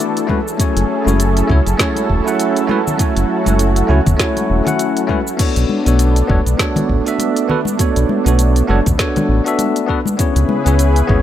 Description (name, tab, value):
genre	sunset chillout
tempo	100 BPM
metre	4/4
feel	swing 57% on 16ths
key	B dorian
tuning	A4 = 440 Hz
part	bell-like tine electric piano	accompaniment	0.0-11.2 s	A3 to F#5	-18 LUFS	moving between left 7 dB and right 8 dB	auto-pan, low-pass filter, digital delay
part	lush unison pad	sustained chords	0.0-11.2 s	C#3 to B4	-20 LUFS	right 1 dB	chorus
part	deep house drum kit	drums	0.0-11.1 s	crash cymbal, hi-hat, shaker, snare drum	-22 LUFS	equal	none
part	electronic kick drum	drums	0.3-11.2 s	none	-18 LUFS	equal	none
part	congas	percussion	0.3-11.2 s	none	-22 LUFS	left 2 dB	none
part	round analog bass	bass	0.8-11.2 s	E1 to C#2	-14 LUFS	equal	tube saturation
room	light reverb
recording	none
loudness	-13 LUFS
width	side -11 dB against mid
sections	0.0-5.4 A section; 5.4-11.2 A section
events	filter sweep on tine electric piano 0.0-5.4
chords	0.3 F#m7; 5.4 Bm9; 10.2 C#m7